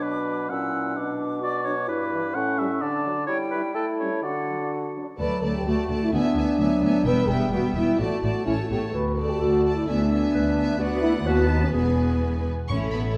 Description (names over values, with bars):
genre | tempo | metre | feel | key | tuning
quick classical-period movement for symphony orchestra | 128 BPM | 2/4 | straight | D major | A4 = 440 Hz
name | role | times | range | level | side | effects
bright silver concert flute | second line | 0.0-4.9 s | F#5 to E6 | -37 LUFS | equal | none
warm clarinet | second line | 0.0-12.4 s | F#3 to D5 | -33 LUFS | equal | none
warm oboe | second line | 0.0-4.7 s | A4 to F#5 | -32 LUFS | equal | none
warm bassoon | accompaniment | 0.0-5.0 s | G2 to A3 | -33 LUFS | equal | none
warm French horn section | sustained chords | 0.0-12.2 s | E3 to B4 | -28 LUFS | equal | none
rich chamber violin section | melody | 5.2-13.2 s | F#5 to C#6 | -40 LUFS | equal | none
rich chamber violin section | second line | 5.2-13.1 s | E4 to E5 | -36 LUFS | equal | none
rich chamber viola section | accompaniment | 5.2-13.2 s | A3 to A4 | -32 LUFS | equal | none
clear chamber double bass section | bass | 5.2-13.2 s | E1 to D#2 | -31 LUFS | equal | none
rich studio cello section | bass | 5.2-13.0 s | D2 to C#4 | -31 LUFS | equal | none
timpani | percussion | 12.7-13.2 s | A2 | -32 LUFS | equal | none
room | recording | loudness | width
wet scoring stage reverb, RT60 1.8 s | none | -24 LUFS | mono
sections
0.0-5.2 A section; 5.2-12.7 B section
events
none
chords
0.0 Bm; 0.5 F#7/A#; 1.0 Bm; 1.9 Em7/G; 2.4 A7; 2.8 D; 3.3 Em/G; 3.8 A7; 4.2 D; 6.1 E7/D; 7.1 Em; 8.0 D/A; 8.5 A; 8.9 D; 9.9 E7/D; 10.8 Bm/D; 11.3 B7/D#; 11.7 E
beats
0.03 | 0.50 0.97 | 1.43 1.89 | 2.35 2.82 | 3.28 3.75 | 4.23 4.72 | 5.20 5.67 | 6.13 6.59 | 7.05 7.52 | 7.99 8.47 | 8.94 9.41 | 9.87 10.34 | 10.80 11.27 | 11.74 12.21 | 12.70 13.17